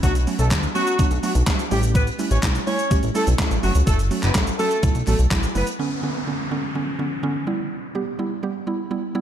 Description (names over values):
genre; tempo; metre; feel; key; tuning
dance-pop; 125 BPM; 4/4; straight; unclear; A4 = 440 Hz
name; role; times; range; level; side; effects
warm horn section; melody; 0.0-5.7 s; F#3 to C#5; -25 LUFS; equal; tape echo
mallet-like synth pluck; accompaniment; 0.0-9.2 s; D3 to A4; -25 LUFS; right 3 dB; chorus
chorused synth bass; bass; 0.0-5.6 s; F#1 to D2; -20 LUFS; equal; sidechain pumping
crisp 8-bit digital drum machine; drums; 0.0-5.8 s; handclaps, hi-hat, kick drum, shaker, snare drum; -22 LUFS; equal; overdrive
group handclap; percussion; 0.5-5.4 s; none; barely audible; none; none
downlifter; sound effects; 5.8-9.2 s; none; -31 LUFS; right 1 dB; slapback echo
room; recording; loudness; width
light reverb, digital ambience; none; -19 LUFS; side -10 dB against mid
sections
0.0-5.8 A section; 5.8-9.2 B section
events
drop 0.0-5.8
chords
0.0 Bm7; 1.7 A7; 3.6 F#m; 4.8 B7sus4; 5.8 Bmadd9; 7.5 Em